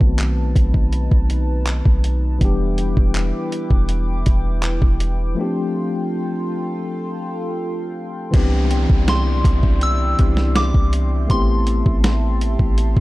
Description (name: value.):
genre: contemporary R&B.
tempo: 81 BPM.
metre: 4/4.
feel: straight.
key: C major.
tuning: A4 = 441 Hz.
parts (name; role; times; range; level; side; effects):
tine electric piano; accompaniment; 0.0-13.0 s; D#3 to G4; -24 LUFS; left 2 dB; medium stereo tremolo.
chorused pulse-width pad; sustained chords; 0.0-13.0 s; D#4 to D6; -29 LUFS; right 1 dB; none.
warm 808-style bass; bass; 0.0-13.0 s; E1 to C2; -19 LUFS; equal; none.
dusty soul sampler-style drum kit; drums; 0.0-13.0 s; crash cymbal, handclaps, hi-hat, kick drum, snare drum; -18 LUFS; equal; none.
downlifter; sound effects; 8.3-13.0 s; none; -33 LUFS; equal; none.
celesta; texture; 8.7-9.6 s; G5; -36 LUFS; right 3 dB; tape echo.
soft synth bell; melody; 9.1-12.7 s; C6 to E6; -25 LUFS; equal; chorus, tape echo.
room: digital ambience.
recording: dark, warm production.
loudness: -16 LUFS.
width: side -18 dB against mid.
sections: 0.0-8.3 A section; 8.3-13.0 B section.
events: break 5.4-8.3.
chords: 0.0 B7b9; 2.4 Em7; 5.4 G9sus4; 8.3 Cmaj9; 11.3 Am7.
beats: 0.19 0.93 1.67 | 2.41 3.15 3.89 4.63 | 5.38 6.12 6.86 7.60 | 8.34 9.08 9.82 10.56 | 11.30 12.04 12.78.